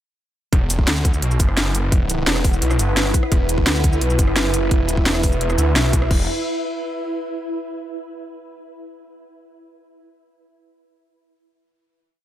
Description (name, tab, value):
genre	dark technical drum and bass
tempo	172 BPM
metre	4/4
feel	straight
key	unclear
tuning	A4 = 440 Hz
part	swarming drone	sustained chords	1.5-6.3 s	E4 to F#5	-25 LUFS	right 1 dB	built-in reverb, sidechain pumping
part	snarling distorted saw bass	bass	0.5-6.3 s	E1 to D2	-20 LUFS	equal	distortion, tube saturation, sidechain pumping
part	drum and bass drum kit	drums	0.5-6.2 s	crash cymbal, hi-hat, rim click, shaker, snare drum	-22 LUFS	equal	overdrive
part	electronic kick drum	drums	0.5-6.2 s	none	-18 LUFS	equal	none
room	little or no reverb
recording	none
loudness	-16 LUFS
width	side -12 dB against mid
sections	0.5-6.1 drop; 6.1-7.5 final chord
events	drop 0.5-6.1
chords	0.5 Esus2